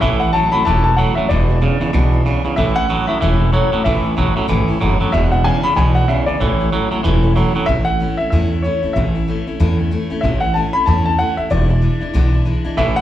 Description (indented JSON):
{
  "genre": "rock",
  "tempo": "188 BPM",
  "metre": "4/4",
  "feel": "swing 60% on 8ths",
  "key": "A major",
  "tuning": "A4 = 442 Hz",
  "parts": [
    { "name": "warm upright piano", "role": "melody", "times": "0.0-13.0 s", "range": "C#5 to B5", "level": "-19 LUFS", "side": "left 2 dB", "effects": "slapback echo" },
    { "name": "picked steel-string acoustic guitar", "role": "accompaniment", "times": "0.0-13.0 s", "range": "E2 to E4", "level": "-22 LUFS", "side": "left 4 dB", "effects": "slapback echo" },
    { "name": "twangy electric guitar", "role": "riff", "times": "0.0-7.7, 12.8-13.0 s", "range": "E2 to F#3", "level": "-19 LUFS", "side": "right 5 dB", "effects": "slapback echo" },
    { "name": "upright bass", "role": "bass", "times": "0.0-13.0 s", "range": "E1 to E2", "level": "-17 LUFS", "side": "equal", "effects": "none" }
  ],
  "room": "light reverb",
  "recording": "live gig heard through the venue's PA, club reverb",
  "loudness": "-14 LUFS",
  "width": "side -12 dB against mid",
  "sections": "0.0-7.7 A section; 7.7-13.0 A section",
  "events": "none",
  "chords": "0.0 A; 1.3 E7; 2.6 A; 5.1 E7; 6.4 A; 11.5 E7"
}